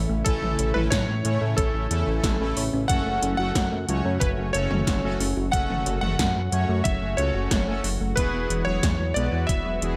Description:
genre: synthwave.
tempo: 91 BPM.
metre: 4/4.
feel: straight.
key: F# minor.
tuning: A4 = 439 Hz.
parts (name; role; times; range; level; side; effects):
lush unison pad; sustained chords; 0.0-10.0 s; C#3 to F#4; -36 LUFS; equal; chorus, sidechain pumping.
thumb-piano-like synth pluck; arpeggios; 0.0-9.9 s; E3 to C#5; -35 LUFS; equal; chorus, tape echo.
chorused synth bass; bass; 0.0-10.0 s; E1 to A2; -29 LUFS; equal; none.
clear electric grand piano; melody; 0.2-10.0 s; A4 to F#5; -32 LUFS; equal; delay.
soft synth bell; second line; 0.2-10.0 s; A4 to F#5; -39 LUFS; equal; none.
analog synth brass; stabs; 0.3-10.0 s; A3 to C#5; -34 LUFS; equal; chorus, vintage 12-bit sampler grit.
80s electronic pad drums; drums; 0.3-10.0 s; hi-hat, snare drum, toms; -31 LUFS; equal; gated reverb on snare and toms.
electronic kick drum; drums; 0.3-9.6 s; none; -28 LUFS; equal; none.
room: little or no reverb.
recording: none.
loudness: -24 LUFS.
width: mono.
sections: 0.0-10.0 A section.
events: none.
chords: 0.0 A; 2.9 F#m; 8.2 Eadd9.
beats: | 0.26 0.92 1.58 2.24 | 2.90 3.56 4.22 4.88 | 5.54 6.20 6.85 7.51 | 8.17 8.83 9.49.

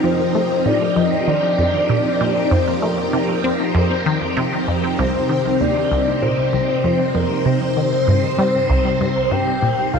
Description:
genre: ambient, sequencer-driven space music.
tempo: 97 BPM.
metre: 4/4.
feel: straight.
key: C minor.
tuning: A4 = 440 Hz.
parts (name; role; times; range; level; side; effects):
soft octave-layered synth lead; melody; 0.0-10.0 s; Bb4 to G5; -21 LUFS; left 1 dB; chorus, tremolo, tape echo.
phased string machine; sustained chords; 0.0-10.0 s; C3 to C5; -20 LUFS; equal; ensemble chorus, phaser.
resonant blip pluck; riff; 0.0-10.0 s; C2 to C4; -20 LUFS; equal; chorus, phaser, cassette tape, tape echo.
room: wet huge ambient reverb, RT60 8.8 s.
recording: none.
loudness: -16 LUFS.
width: side -6 dB against mid.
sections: 0.0-10.0 A section.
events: none.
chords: 0.0 F7sus4; 5.0 Cm7.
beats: | 0.04 0.66 1.28 1.89 | 2.51 3.13 3.75 4.37 | 4.99 5.61 6.22 6.84 | 7.46 8.08 8.70 9.32 | 9.94.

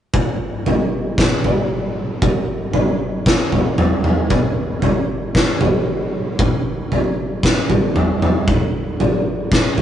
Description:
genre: metal.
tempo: 58 BPM.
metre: 4/4.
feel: straight.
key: none.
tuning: none.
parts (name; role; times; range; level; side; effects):
oversized low-tuned drum kit; drums; 0.1-9.8 s; kick drum, snare drum, toms; -15 LUFS; equal; none.
room: light reverb.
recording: rough rehearsal-room recording, nothing above 10.6 kHz.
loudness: -16 LUFS.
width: side -10 dB against mid.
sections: 0.1-9.8 A section.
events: none.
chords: none.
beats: | 0.14 1.18 2.23 3.27 | 4.31 5.35 6.39 7.43 | 8.47 9.52.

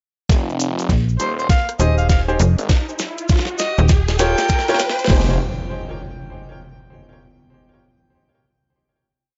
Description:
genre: glitch hop.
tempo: 100 BPM.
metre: 4/4.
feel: swing 63% on 16ths.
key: F minor.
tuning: A4 = 441 Hz.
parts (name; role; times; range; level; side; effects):
phased detuned saw bass; bass; 0.3-5.4 s; Eb1 to Ab1; -24 LUFS; equal; phaser, high-pass filter.
electronic kick drum; drums; 0.3-5.2 s; none; -18 LUFS; equal; overdrive.
pop drum kit; drums; 0.3-5.3 s; crash cymbal, hi-hat, rim click, snare drum; -27 LUFS; equal; overdrive, high-pass filter on snare, high-pass filter on hats, high-pass filter on cymbals, high-pass filter on room.
cabasa; percussion; 0.3-5.1 s; none; -33 LUFS; equal; none.
riser and impact; sound effects; 2.6-7.5 s; none; -30 LUFS; equal; none.
slap-like FM bass; bass; 0.9-4.4 s; Eb1 to Bb1; -19 LUFS; equal; tube saturation.
mellow harmonica; melody; 1.2-5.0 s; C5 to G5; -27 LUFS; equal; digital delay.
bright baby grand piano; stabs; 1.8-5.3 s; Eb4 to Db5; -26 LUFS; equal; sidechain pumping, digital delay.
room: light reverb.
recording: nothing above 7.7 kHz.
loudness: -18 LUFS.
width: mono.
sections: 0.3-5.1 build; 5.1-7.5 final chord.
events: build-up 0.3-5.1; drum fill 0.3-5.1; riser 2.6-5.1.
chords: 0.3 Fm7; 2.7 Eb9; 5.1 Fm7.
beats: | 0.30 0.90 1.50 2.10 | 2.70 3.30 3.90 4.50 | 5.10 5.70 6.30 6.90.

